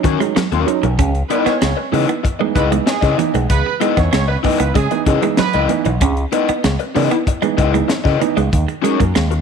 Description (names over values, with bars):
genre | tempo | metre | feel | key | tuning
funk | 96 BPM | 4/4 | straight | C# dorian | A4 = 437 Hz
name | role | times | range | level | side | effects
raw garage guitar | accompaniment | 0.0-9.3 s | C#4 to D#5 | -20 LUFS | left 12 dB | overdrive
dark upright piano | stabs | 0.0-9.0 s | C#3 to D#4 | -22 LUFS | right 11 dB | none
picked electric bass with an envelope filter | bass | 0.0-9.4 s | B1 to D#3 | -18 LUFS | left 1 dB | none
tight funk drum kit | drums | 0.0-9.4 s | hi-hat, kick drum, snare drum | -20 LUFS | left 1 dB | none
clean electric guitar | riff | 0.1-9.3 s | E3 to C#4 | -22 LUFS | right 10 dB | tremolo
clear horn section | second line | 1.3-5.6 s | G#3 to C#5 | -24 LUFS | right 9 dB | none
room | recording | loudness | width
moderate echo chamber reverb, RT60 1.6 s, small room ambience | 1960s-style stereo with parts hard left and right | -14 LUFS | side -6 dB against mid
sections
0.0-9.4 A section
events
none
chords
0.0 D#m7; 1.0 C#m9; 8.5 D#m7